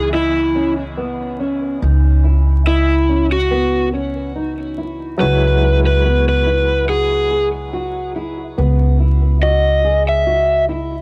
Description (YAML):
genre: trip hop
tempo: 71 BPM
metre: 4/4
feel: swing 55% on 16ths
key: C# minor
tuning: A4 = 440 Hz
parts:
  - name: overdriven slide guitar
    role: melody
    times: 0.0-10.6 s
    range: E4 to E5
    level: -19 LUFS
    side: equal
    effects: vintage 12-bit sampler grit, cassette tape
  - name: felt-muted upright piano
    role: accompaniment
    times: 0.0-11.0 s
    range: E3 to D#5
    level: -30 LUFS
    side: equal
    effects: tremolo, vintage 12-bit sampler grit, cassette tape
  - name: nylon-string guitar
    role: arpeggios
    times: 0.0-11.0 s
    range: B3 to D#5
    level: -26 LUFS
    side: equal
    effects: low-pass filter, cassette tape, tape echo
  - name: upright bass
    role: bass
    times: 0.0-11.0 s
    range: C#2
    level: -19 LUFS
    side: equal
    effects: tube saturation
room: light reverb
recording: home recording on cassette, vinyl crackle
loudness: -16 LUFS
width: mono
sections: 0.0-11.0 A section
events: filter sweep on nylon-string guitar 0.0-11.0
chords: 0.0 C#m9; 5.2 Eadd9/C#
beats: 0.13 0.97 | 1.82 2.67 3.51 4.36 | 5.20 6.05 6.89 7.74 | 8.58 9.43 10.27